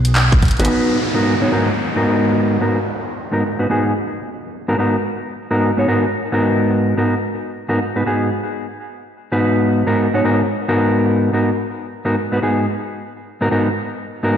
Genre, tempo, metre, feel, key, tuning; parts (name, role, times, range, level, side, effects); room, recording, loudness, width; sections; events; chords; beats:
glitch hop; 110 BPM; 4/4; swing 62% on 16ths; G# minor; A4 = 440 Hz
drum and bass drum kit; drums; 0.0-0.8 s; handclaps, hi-hat; -20 LUFS; equal; overdrive, studio reverb
electronic kick drum; drums; 0.3-0.6 s; -12 LUFS; equal; overdrive, studio reverb
mellow electric guitar; stabs; 0.6-14.4 s; G#2 to C#5; -16 LUFS; equal; vintage 12-bit sampler grit, sidechain pumping, low-pass filter, ping-pong delay
formant-sweep wobble bass; bass; 0.6-0.7 s; G#1; -16 LUFS; equal; chorus, tube saturation
downlifter; sound effects; 0.7-5.1 s; -24 LUFS; equal
wet lush hall reverb, RT60 2.0 s, digital ambience; played on a big sound system in a bare room, large studio reverb; -15 LUFS; side -8 dB against mid
0.7-14.4 A section
band accent 0.2; drum fill 0.4
0.0 G#m7
0.15 | 0.70 1.24 1.79 2.33 | 2.88 3.43 3.97 4.52 | 5.06 5.61 6.15 6.70 | 7.24 7.79 8.34 8.88 | 9.43 9.97 10.52 11.06 | 11.61 12.15 12.70 13.24 | 13.79 14.34